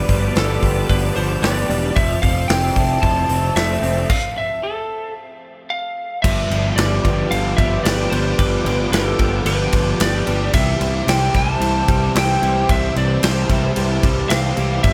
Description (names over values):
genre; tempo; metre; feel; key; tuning
rock, shoegaze and dream pop; 112 BPM; 4/4; straight; G mixolydian; A4 = 440 Hz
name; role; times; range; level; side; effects
lightly driven lead guitar; melody; 0.0-14.9 s; A4 to A5; -25 LUFS; equal; slapback echo
string machine, full ensemble; sustained chords; 0.0-14.9 s; F4 to E6; -31 LUFS; equal; ensemble chorus
electric guitar through a small old amp; arpeggios; 0.0-14.9 s; E3 to A4; -32 LUFS; equal; none
direct-recorded clean electric guitar; riff; 0.0-14.9 s; F2 to E4; -28 LUFS; equal; reverse reverb
overdriven electric guitar; riff; 0.0-14.9 s; G2 to A4; -29 LUFS; equal; ensemble chorus
growling fingered electric bass; bass; 0.0-14.9 s; E1 to C2; -24 LUFS; equal; overdrive
big rock drum kit; drums; 0.1-14.9 s; crash cymbal, hi-hat, kick drum, snare drum; -23 LUFS; equal; none
room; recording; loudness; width
light reverb, small room reverb; none; -18 LUFS; mono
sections
0.0-6.2 A section; 6.2-14.9 B section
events
stop 4.1-6.2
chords
0.0 G7; 2.0 Fmaj7; 6.2 G7; 10.5 C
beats
0.35 0.88 1.42 | 1.95 2.49 3.03 3.56 | 4.10 4.63 5.17 5.71 | 6.24 6.78 7.32 7.85 | 8.39 8.93 9.46 10.00 | 10.54 11.08 11.62 12.15 | 12.69 13.23 13.77 14.30 | 14.84